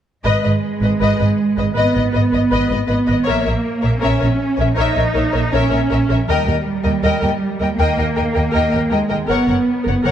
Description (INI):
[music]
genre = cinematic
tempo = 80 BPM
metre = 4/4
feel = straight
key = G# minor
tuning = A4 = 440 Hz
[part]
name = warm symphonic violin section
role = melody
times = 0.2-10.1 s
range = D#5 to G5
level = -25 LUFS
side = left 6 dB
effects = none
[part]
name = warm symphonic violin section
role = second line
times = 0.2-10.1 s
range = C#5 to D#5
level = -24 LUFS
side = left 4 dB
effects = none
[part]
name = rich symphonic viola section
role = accompaniment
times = 0.3-10.1 s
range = A#4 to B4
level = -24 LUFS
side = left 1 dB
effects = none
[part]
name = rich symphonic cello section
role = bass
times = 0.3-10.1 s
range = G3 to D#4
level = -19 LUFS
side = right 3 dB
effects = none
[part]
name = warm symphonic double bass section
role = bass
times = 0.3-10.1 s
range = F#1 to D#2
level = -19 LUFS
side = right 1 dB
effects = none
[sound]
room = moderate scoring stage reverb, RT60 1.9 s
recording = dark, warm production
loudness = -14 LUFS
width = side -10 dB against mid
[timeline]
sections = 0.3-10.1 A section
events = none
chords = 0.3 G#m; 3.3 A#dim; 6.3 D#; 9.3 F#